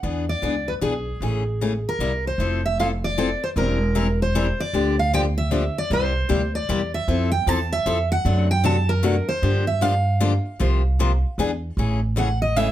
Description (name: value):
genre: acoustic string swing (jazz manouche)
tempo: 153 BPM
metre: 3/4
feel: swing 62% on 8ths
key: F major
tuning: A4 = 442 Hz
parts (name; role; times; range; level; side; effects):
- picked steel-string acoustic guitar; accompaniment; 0.0-12.7 s; C3 to C5; -24 LUFS; left 4 dB; none
- upright bass; bass; 0.0-12.7 s; E1 to G2; -22 LUFS; right 1 dB; none
- picked steel-string acoustic guitar; melody; 0.3-12.7 s; G#4 to A5; -25 LUFS; right 2 dB; plate reverb
room: light reverb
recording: none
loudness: -19 LUFS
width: side -12 dB against mid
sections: 0.0-2.4 A section; 2.4-11.8 B section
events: none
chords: 0.0 E7; 1.2 Amaj7; 2.0 C7; 2.4 Fmaj7; 3.6 C7/E; 4.7 Gm7/D; 5.9 C9; 7.1 Fmaj7; 8.3 D7/F#; 9.4 Gm7; 10.6 C7sus4; 11.4 E7; 11.8 Amaj7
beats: | 0.03 0.42 0.81 | 1.21 1.60 1.99 | 2.38 2.77 3.17 | 3.56 3.95 4.34 | 4.73 5.12 5.51 | 5.91 6.30 6.69 | 7.08 7.47 7.86 | 8.25 8.64 9.04 | 9.43 9.82 10.21 | 10.60 10.99 11.38 | 11.77 12.16 12.55